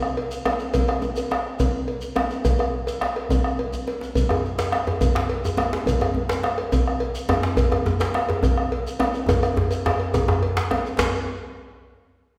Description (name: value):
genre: west african traditional, West African drum ensemble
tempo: 140 BPM (dotted quarters)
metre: 12/8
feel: straight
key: none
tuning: none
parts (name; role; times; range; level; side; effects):
- bombo; percussion; 0.0-11.1 s; none; -28 LUFS; equal; none
- djembe; percussion; 0.0-11.1 s; none; -29 LUFS; equal; none
- cowbell; percussion; 0.2-11.1 s; none; -30 LUFS; equal; none
- shekere; percussion; 0.3-11.1 s; none; -37 LUFS; equal; none
- djembe; percussion; 4.3-11.1 s; none; -27 LUFS; equal; none
room: wet recital hall reverb, RT60 1.6 s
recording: recorded in a church or concert hall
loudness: -23 LUFS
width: mono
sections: 0.0-11.0 A section; 11.0-12.4 B section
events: drum fill 3.6-4.2, 9.3-11.0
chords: none